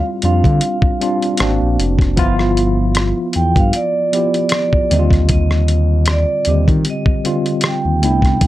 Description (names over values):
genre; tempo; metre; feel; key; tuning
R&B, neo-soul; 77 BPM; 4/4; swing 55% on 16ths; unclear; A4 = 440 Hz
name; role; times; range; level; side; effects
vibraphone with medium hard mallets; melody; 0.0-8.4 s; D5 to G5; -20 LUFS; right 3 dB; slapback echo, plate reverb
tine electric piano; accompaniment; 0.0-8.5 s; D3 to G4; -18 LUFS; equal; overdrive, fast stereo tremolo, plate reverb
smooth synth bass; bass; 0.2-8.5 s; F1 to Eb3; -15 LUFS; equal; none
dusty soul sampler-style drum kit; drums; 0.2-8.5 s; hi-hat, kick drum, rim click; -16 LUFS; equal; none
room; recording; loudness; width
light reverb; dark, warm production; -13 LUFS; side -15 dB against mid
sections
0.0-8.5 A section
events
none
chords
0.0 Dm9; 1.4 G#9; 2.2 G6; 4.9 Ebmaj9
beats
0.62 1.40 | 2.17 2.95 3.73 4.51 | 5.29 6.07 6.85 7.63 | 8.41